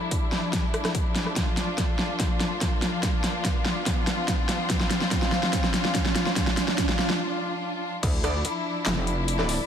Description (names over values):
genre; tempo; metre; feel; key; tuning
heavy wobble dubstep; 144 BPM; 4/4; half-time; D minor; A4 = 441 Hz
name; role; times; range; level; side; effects
rich studio string section; sustained chords; 0.0-9.7 s; F3 to F4; -29 LUFS; left 2 dB; sidechain pumping, low-pass filter
riser; sound effects; 0.0-7.2 s; none; -34 LUFS; right 3 dB; none
dubstep drum kit; drums; 0.1-9.6 s; crash cymbal, handclaps, hi-hat, rim click, snare drum; -27 LUFS; equal; none
electronic kick drum; drums; 0.1-8.1 s; none; -28 LUFS; equal; none
metallic wobble bass; bass; 8.0-9.6 s; F1 to D2; -27 LUFS; equal; chorus, overdrive
orchestra-hit-like synth stab; stabs; 8.2-9.7 s; D4 to D5; -33 LUFS; right 2 dB; built-in reverb, dub echo
room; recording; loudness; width
light reverb, digital ambience; none; -23 LUFS; side -8 dB against mid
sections
0.0-8.0 A section; 8.0-9.7 B section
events
build-up 0.0-8.0; drum fill 0.0-7.2; riser 0.0-7.2; break 7.2-8.0; drop 8.0-9.7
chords
0.0 Dmadd9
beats
0.11 0.53 0.95 | 1.36 1.78 2.20 2.61 | 3.03 3.45 3.86 4.28 | 4.70 5.11 5.53 5.95 | 6.36 6.78 7.20 7.61 | 8.03 8.45 8.86 9.28